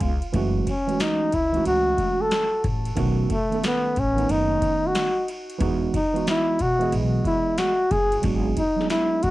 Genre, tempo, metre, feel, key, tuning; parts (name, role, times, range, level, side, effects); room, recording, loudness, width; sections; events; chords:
hip hop, jazz-hop; 91 BPM; 4/4; swing 66% on 16ths; F# dorian; A4 = 440 Hz
tine electric piano; accompaniment; 0.0-9.2 s; D#3 to E#5; -27 LUFS; right 5 dB; overdrive, auto-pan, cassette tape
upright bass; bass; 0.0-9.3 s; F#1 to B2; -26 LUFS; left 1 dB
booming analog drum machine; drums; 0.0-9.3 s; hi-hat, kick drum, ride cymbal, snare drum; -29 LUFS; left 1 dB; cassette tape
breathy flugelhorn; melody; 0.7-9.3 s; A3 to A4; -23 LUFS; left 1 dB; cassette tape, tape echo
light reverb; home recording on cassette; -20 LUFS; side -17 dB against mid
0.3-9.3 A section
tine electric piano fill 0.0-0.3
0.3 F#m7; 3.0 B7; 5.6 Emaj7; 8.2 G#m7b5